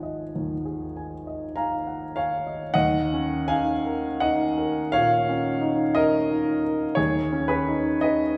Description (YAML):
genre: classical, impressionist solo piano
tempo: 49-59 BPM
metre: 4/4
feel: rubato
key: Eb minor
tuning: A4 = 440 Hz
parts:
  - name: clear grand piano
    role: solo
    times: 0.0-8.4 s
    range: Ab1 to Bb5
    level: -25 LUFS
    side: equal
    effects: none
room: wet recital hall reverb, RT60 1.7 s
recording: heard from further back in the room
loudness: -24 LUFS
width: mono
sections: 0.0-2.7 A section; 2.7-8.4 B section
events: none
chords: 0.0 Ab5; 2.7 Eb5; 7.0 B69/D#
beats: 0.35 1.56 | 2.74 3.83 4.92 5.95 | 6.98 8.01